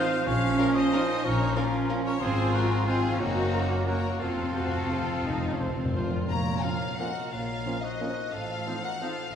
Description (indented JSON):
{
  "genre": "classical, orchestral ballroom waltz",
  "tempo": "162-196 BPM",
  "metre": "3/4",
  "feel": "rubato",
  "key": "Bb minor",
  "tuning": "A4 = 440 Hz",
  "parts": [
    { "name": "warm symphonic violin section", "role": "melody", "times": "0.0-9.3 s", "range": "Eb5 to Bb5", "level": "-37 LUFS", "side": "left 5 dB", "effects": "none" },
    { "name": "clear clarinet", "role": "second line", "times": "0.0-9.1 s", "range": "Bb3 to Eb4", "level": "-35 LUFS", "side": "left 3 dB", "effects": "none" },
    { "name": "clear oboe", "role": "second line", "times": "0.0-9.4 s", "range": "Bb3 to Db5", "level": "-36 LUFS", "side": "right 1 dB", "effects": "none" },
    { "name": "mellow hollow concert flute", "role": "second line", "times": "0.0-9.4 s", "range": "C5 to F6", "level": "-38 LUFS", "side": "left 1 dB", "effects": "none" },
    { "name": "rich symphonic violin section", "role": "second line", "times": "0.0-9.3 s", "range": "Db4 to F5", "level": "-37 LUFS", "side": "left 2 dB", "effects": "none" },
    { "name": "clear symphonic viola section", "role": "accompaniment", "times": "0.0-9.1 s", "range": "Bb3 to Gb4", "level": "-35 LUFS", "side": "left 2 dB", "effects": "none" },
    { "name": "mellow bassoon", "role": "accompaniment", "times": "0.0-9.1 s", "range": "F3 to Gb3", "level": "-36 LUFS", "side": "right 2 dB", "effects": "none" },
    { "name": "clear trombone section", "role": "sustained chords", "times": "0.0-9.1 s", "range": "F2 to Bb3", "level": "-42 LUFS", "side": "right 3 dB", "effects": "none" },
    { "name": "warm French horn section", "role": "sustained chords", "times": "0.0-9.1 s", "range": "Bb3 to Gb4", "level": "-44 LUFS", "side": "left 2 dB", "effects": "none" },
    { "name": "warm trumpet", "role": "stabs", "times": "0.0-6.1 s", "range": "Bb4 to C5", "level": "-41 LUFS", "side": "right 2 dB", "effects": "none" },
    { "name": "warm symphonic cello section", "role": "bass", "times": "0.0-8.6 s", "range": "A2 to Gb4", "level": "-33 LUFS", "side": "right 3 dB", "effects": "none" },
    { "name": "rich symphonic double bass section", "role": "bass", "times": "0.3-8.6 s", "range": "F1 to Bb1", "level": "-32 LUFS", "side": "equal", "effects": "none" },
    { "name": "timpani", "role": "percussion", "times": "0.3-0.7, 4.2-6.8 s", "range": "F2 to Bb2", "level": "-33 LUFS", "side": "equal", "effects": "none" }
  ],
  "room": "wet scoring stage reverb, RT60 2.0 s",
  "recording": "heard from further back in the room",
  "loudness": "-25 LUFS",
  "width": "side -8 dB against mid",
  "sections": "0.0-6.3 A section; 6.3-9.4 B section",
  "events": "timpani fill 4.2-6.3",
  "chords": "0.3 Bbm; 2.2 Fm/Ab; 3.2 Gb; 4.2 F; 6.3 Bbm; 8.3 F7/A"
}